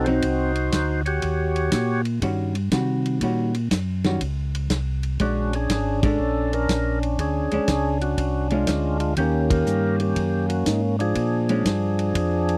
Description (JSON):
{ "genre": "soul jazz organ trio", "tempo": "121 BPM", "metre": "4/4", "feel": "swing 67% on 8ths", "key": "unclear", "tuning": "A4 = 441 Hz", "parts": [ { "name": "percussive tonewheel organ", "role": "melody", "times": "0.0-2.0, 5.2-12.6 s", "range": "F3 to Db5", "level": "-26 LUFS", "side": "equal", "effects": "slow rotary speaker" }, { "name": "mellow tonewheel organ", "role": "bass", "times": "0.0-12.6 s", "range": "Ab1 to C3", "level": "-27 LUFS", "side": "equal", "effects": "chorus vibrato, slow rotary speaker" }, { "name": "vintage hollow-body jazz guitar", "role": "accompaniment", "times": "0.1-11.6 s", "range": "Eb3 to F#4", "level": "-28 LUFS", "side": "equal", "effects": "none" }, { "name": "warm soul drum kit", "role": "drums", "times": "0.1-12.6 s", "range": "hi-hat, kick drum, ride cymbal, snare drum", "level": "-28 LUFS", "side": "equal", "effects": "none" } ], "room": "little or no reverb", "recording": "dry, close 1970s-style studio recording", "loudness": "-23 LUFS", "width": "mono", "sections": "0.0-12.6 A section", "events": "band accent 5.9, 9.4", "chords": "0.0 Adim7 (rootless); 1.2 Eb7#9; 5.2 Bb7#9; 9.2 Eb7#9; 11.2 Bb7", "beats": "0.23 0.72 | 1.22 1.72 2.21 2.71 | 3.21 3.71 4.20 4.70 | 5.20 5.69 6.19 6.68 | 7.18 7.68 8.17 8.67 | 9.17 9.66 10.16 10.66 | 11.15 11.65 12.15" }